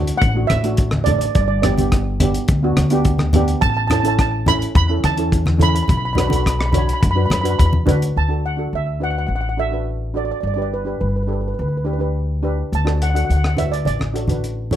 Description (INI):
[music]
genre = calypso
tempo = 106 BPM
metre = 4/4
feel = straight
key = D major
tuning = A4 = 440 Hz
[part]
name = steel pan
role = melody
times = 0.0-14.8 s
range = B4 to B5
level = -23 LUFS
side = right 3 dB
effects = slapback echo
[part]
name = steel pan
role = accompaniment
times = 0.0-14.8 s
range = A3 to C#5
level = -24 LUFS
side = right 1 dB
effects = none
[part]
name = upright bass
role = bass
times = 0.0-14.8 s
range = G1 to F#2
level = -20 LUFS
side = left 1 dB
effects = none
[part]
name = tight funk drum kit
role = drums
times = 0.1-8.2, 12.7-14.8 s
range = hi-hat, kick drum, rim click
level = -21 LUFS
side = left 1 dB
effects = none
[part]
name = congas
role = percussion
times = 0.5-8.0, 13.6-14.8 s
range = none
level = -21 LUFS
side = equal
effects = none
[sound]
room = light reverb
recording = close, detailed microphones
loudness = -16 LUFS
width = side -11 dB against mid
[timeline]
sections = 0.0-8.2 A section; 8.2-14.8 B section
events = none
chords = 0.0 D; 1.4 G; 3.6 A; 5.9 Bm; 8.2 Dadd9; 10.4 G; 12.7 D